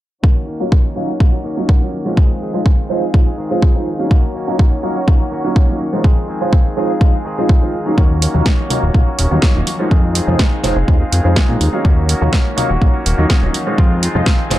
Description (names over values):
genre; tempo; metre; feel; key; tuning
filtered disco house; 124 BPM; 4/4; straight; Eb dorian; A4 = 441 Hz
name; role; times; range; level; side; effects
rich studio violin section; sustained chords; 0.2-14.6 s; Eb4 to Ab5; -26 LUFS; left 2 dB; sidechain pumping, low-pass filter
direct-recorded clean electric guitar; riff; 0.2-14.6 s; Eb3 to Ab4; -26 LUFS; equal; sidechain pumping, low-pass filter
electronic kick drum; drums; 0.2-14.4 s; none; -12 LUFS; equal; none
clear baby grand piano; accompaniment; 0.6-14.6 s; F3 to F5; -20 LUFS; right 1 dB; phaser, sidechain pumping, low-pass filter
fat analog bass; bass; 8.0-14.6 s; Eb1 to Bb2; -16 LUFS; equal; sidechain pumping, low-pass filter
maracas and congas; percussion; 8.0-14.6 s; none; -24 LUFS; left 2 dB; sidechain pumping on perc, low-pass filter on perc
house drum kit; drums; 8.2-14.6 s; hi-hat, snare drum; -20 LUFS; right 1 dB; sidechain pumping on hats
room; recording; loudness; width
little or no reverb; dark, warm production; -12 LUFS; side -14 dB against mid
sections
0.2-14.6 A section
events
filter sweep 0.2-14.6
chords
0.2 Ebm7; 9.9 Fm7; 11.9 Ebm7; 13.8 Fm7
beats
| 0.24 0.72 1.21 1.69 | 2.17 2.66 3.14 3.62 | 4.11 4.59 5.08 5.56 | 6.04 6.53 7.01 7.50 | 7.98 8.46 8.95 9.43 | 9.92 10.40 10.88 11.37 | 11.85 12.34 12.82 13.30 | 13.79 14.27